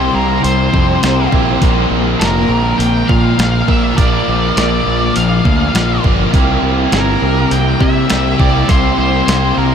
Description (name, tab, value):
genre	rock, shoegaze and dream pop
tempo	102 BPM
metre	4/4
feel	straight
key	C mixolydian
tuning	A4 = 440 Hz
part	octave-fuzz lead guitar	melody	0.0-9.7 s	Bb4 to G5	-18 LUFS	equal	distortion, ping-pong delay
part	overdriven electric guitar	riff	0.0-9.7 s	Bb2 to Bb4	-18 LUFS	right 8 dB	reverse reverb
part	thick fuzz guitar	riff	0.0-9.7 s	Bb2 to C4	-17 LUFS	left 7 dB	distortion, ensemble chorus
part	growling fingered electric bass	bass	0.0-9.7 s	F1 to C3	-17 LUFS	equal	overdrive
part	detuned 8-bit digital drum machine	drums	0.4-9.4 s	hi-hat, kick drum, snare drum	-17 LUFS	equal	none
room	moderate huge ambient reverb, RT60 8.4 s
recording	dreamy mix soaked in reverb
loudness	-10 LUFS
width	side -7 dB against mid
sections	0.0-9.7 A section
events	none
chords	0.0 C7sus4; 1.6 Bb; 6.3 C7(no3)